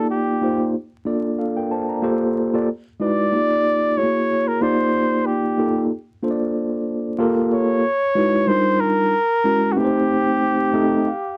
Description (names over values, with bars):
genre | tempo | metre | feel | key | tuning
R&B | 93 BPM | 4/4 | swing 57% on 16ths | unclear | A4 = 440 Hz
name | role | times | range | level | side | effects
warm flugelhorn | melody | 0.0-11.4 s | F#4 to D5 | -22 LUFS | equal | none
mellow tine electric piano | accompaniment | 0.0-11.4 s | G3 to Bb5 | -22 LUFS | equal | none
room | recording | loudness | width
light reverb | dry, close 1970s-style studio recording, vinyl crackle | -20 LUFS | mono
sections
0.0-7.2 A section; 7.2-11.4 B section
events
tine electric piano fill 10.4-11.4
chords
0.0 F13sus4; 0.7 Bbmaj7; 2.7 Emaj9; 3.3 Ebmaj9; 4.0 F#9; 4.6 F13sus4; 5.9 Bbmaj7; 7.2 Gm9; 7.8 Emaj9; 8.5 Ebmaj9; 9.1 F#9; 9.8 Am7b5